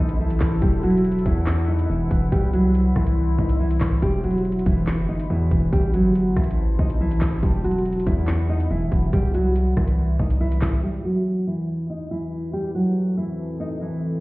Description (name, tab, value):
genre	hip hop, drill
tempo	141 BPM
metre	4/4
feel	half-time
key	E harmonic minor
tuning	A4 = 440 Hz
part	nylon-string guitar	melody	0.0-14.2 s	E3 to D#5	-23 LUFS	equal	low-pass filter
part	deep dark ambient pad	sustained chords	0.0-14.2 s	E2 to C6	-33 LUFS	left 3 dB	chorus, built-in reverb, low-pass filter
part	hard-hitting 808-style bass	bass	0.0-10.8 s	E1 to E2	-22 LUFS	equal	none
part	drill drum kit	drums	0.1-10.7 s	handclaps, hi-hat, kick drum, rim click, snare drum	-22 LUFS	equal	none
room	digital ambience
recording	heard muffled through a wall, stone room reverb, EQ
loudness	-19 LUFS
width	side -21 dB against mid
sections	0.0-10.8 A section; 10.8-14.2 B section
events	filter sweep 10.8-14.2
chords	0.0 Am; 0.6 Emadd9; 2.3 C; 4.0 Emadd9; 5.7 Am; 7.4 Emadd9; 9.1 C; 10.8 Emadd9; 12.5 Am